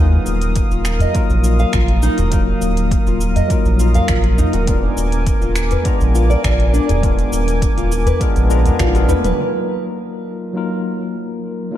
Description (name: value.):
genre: organic downtempo.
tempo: 102 BPM.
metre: 4/4.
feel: straight.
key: Eb harmonic minor.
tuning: A4 = 439 Hz.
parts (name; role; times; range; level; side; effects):
tine electric piano; accompaniment; 0.0-11.8 s; Gb3 to Bb5; -22 LUFS; left 2 dB; overdrive, medium stereo tremolo, sidechain pumping, diffuse ambient delay.
warm analog pad; sustained chords; 0.0-11.8 s; Gb3 to Eb6; -26 LUFS; right 2 dB; chorus, sidechain pumping.
nylon-string guitar; arpeggios; 0.0-9.4 s; D4 to F5; -24 LUFS; equal; diffuse ambient delay.
round analog bass; bass; 0.0-9.3 s; Eb1 to Eb2; -16 LUFS; equal; sidechain pumping.
organic electronic drum kit; drums; 0.3-9.4 s; finger snaps, hi-hat, shaker, toms; -27 LUFS; right 1 dB; low-pass filter on hats, low-pass filter on perc, low-pass filter on snare, low-pass filter on toms, low-pass filter on room.
electronic kick drum; drums; 0.6-8.9 s; none; -19 LUFS; equal; overdrive.
udu; percussion; 1.0-9.2 s; none; -20 LUFS; equal; none.
room: light reverb.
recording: none.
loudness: -14 LUFS.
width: side -12 dB against mid.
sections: 0.0-9.4 A section; 9.4-11.8 B section.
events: drum fill 8.8-9.4; filter sweep on analog synth pad 9.4-11.8.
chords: 0.0 Ebmadd9; 4.7 Bb7b9/Eb; 9.4 Ebmadd9.